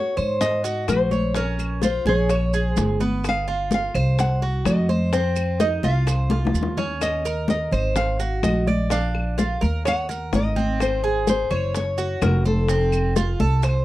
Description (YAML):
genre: latin, Cuban son and guajira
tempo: 127 BPM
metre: 4/4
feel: straight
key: Bb minor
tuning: A4 = 442 Hz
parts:
  - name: nylon-string guitar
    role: melody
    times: 0.0-13.8 s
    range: A4 to Gb5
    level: -25 LUFS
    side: left 2 dB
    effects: none
  - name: Cuban tres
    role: arpeggios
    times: 0.0-13.8 s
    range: Cb4 to D5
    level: -27 LUFS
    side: right 4 dB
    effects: none
  - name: upright bass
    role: bass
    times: 0.2-13.8 s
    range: F1 to Ab2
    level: -23 LUFS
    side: equal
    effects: none
  - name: claves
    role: percussion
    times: 0.2-13.8 s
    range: none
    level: -38 LUFS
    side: left 4 dB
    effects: none
  - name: congas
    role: percussion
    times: 0.2-13.8 s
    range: none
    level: -26 LUFS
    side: left 2 dB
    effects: none
  - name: maracas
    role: percussion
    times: 0.2-13.8 s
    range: none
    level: -37 LUFS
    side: right 12 dB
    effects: none
  - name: bongos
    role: percussion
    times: 0.4-13.8 s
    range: none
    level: -31 LUFS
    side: left 7 dB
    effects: none
room: light reverb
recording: dry, close 1970s-style studio recording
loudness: -19 LUFS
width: side -16 dB against mid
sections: 0.0-13.8 A section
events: drum fill 6.3-7.0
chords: 0.4 Ab7; 1.3 Bbm7; 2.3 Gdim; 3.2 G7; 4.2 Cdim; 5.1 F5; 7.0 Eb5; 8.0 Ab7; 8.9 Bb; 9.9 Ebm7; 10.8 Ab; 11.7 Gb5; 12.7 F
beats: 0.41 0.88 | 1.35 1.82 2.29 2.77 | 3.24 3.71 4.18 4.66 | 5.13 5.60 6.07 6.55 | 7.02 7.49 7.96 8.44 | 8.91 9.38 9.85 10.33 | 10.80 11.27 11.74 12.21 | 12.69 13.16 13.63